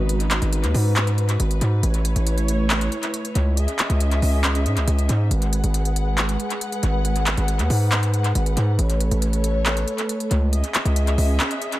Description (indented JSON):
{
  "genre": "hip hop, trap",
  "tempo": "138 BPM",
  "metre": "4/4",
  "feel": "half-time",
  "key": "G# phrygian",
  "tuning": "A4 = 440 Hz",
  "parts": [
    { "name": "concert harp", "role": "accompaniment", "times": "0.0-0.8 s", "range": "C#4 to D#4", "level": "-46 LUFS", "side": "left 7 dB", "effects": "none" },
    { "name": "dark studio string section", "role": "sustained chords", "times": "0.0-11.8 s", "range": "G#3 to F#5", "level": "-26 LUFS", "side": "equal", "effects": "none" },
    { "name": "distorted 808-style bass", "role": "bass", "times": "0.0-11.4 s", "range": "G#1 to G#2", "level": "-20 LUFS", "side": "equal", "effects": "distortion" },
    { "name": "trap drum kit", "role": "drums", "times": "0.1-11.8 s", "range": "handclaps, hi-hat", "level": "-25 LUFS", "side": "equal", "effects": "tape echo" }
  ],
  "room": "light reverb",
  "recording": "echo-heavy mix",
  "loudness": "-18 LUFS",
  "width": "side -16 dB against mid",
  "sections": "0.0-11.8 A section",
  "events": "break 11.4-11.8",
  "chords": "0.0 G#m7; 1.8 Aadd9; 3.6 C#madd9; 5.3 G#m7; 8.8 Aadd9; 10.5 C#madd9"
}